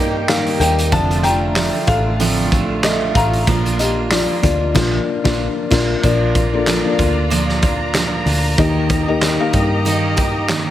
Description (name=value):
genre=piano-driven pop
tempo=94 BPM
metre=4/4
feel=swing 56% on 16ths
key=Bb major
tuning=A4 = 440 Hz
part: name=felt-muted upright piano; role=accompaniment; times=0.0-10.7 s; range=Bb2 to Bb5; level=-19 LUFS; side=left 4 dB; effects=none
part: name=rich studio string section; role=sustained chords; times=0.0-10.7 s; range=D3 to Bb5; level=-26 LUFS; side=left 1 dB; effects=none
part: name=picked steel-string acoustic guitar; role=riff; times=0.0-10.7 s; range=F2 to G4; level=-21 LUFS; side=right 6 dB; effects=none
part: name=vintage muted picked electric bass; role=bass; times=0.0-10.7 s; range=F1 to G2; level=-21 LUFS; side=equal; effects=none
part: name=loose indie drum kit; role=drums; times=0.3-10.7 s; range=crash cymbal, handclaps, hi-hat, kick drum, snare drum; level=-20 LUFS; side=equal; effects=none
room=light reverb, small room ambience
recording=none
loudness=-14 LUFS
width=side -12 dB against mid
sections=0.0-6.0 A section; 6.0-10.7 B section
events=felt piano solo 0.0-6.0; band accent 4.8-6.0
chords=0.0 Eb; 0.9 Dm/F; 3.5 Bb; 8.6 Eb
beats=0.29 | 0.92 1.56 2.20 2.84 | 3.48 4.12 4.75 5.39 | 6.03 6.67 7.31 7.95 | 8.58 9.22 9.86 10.50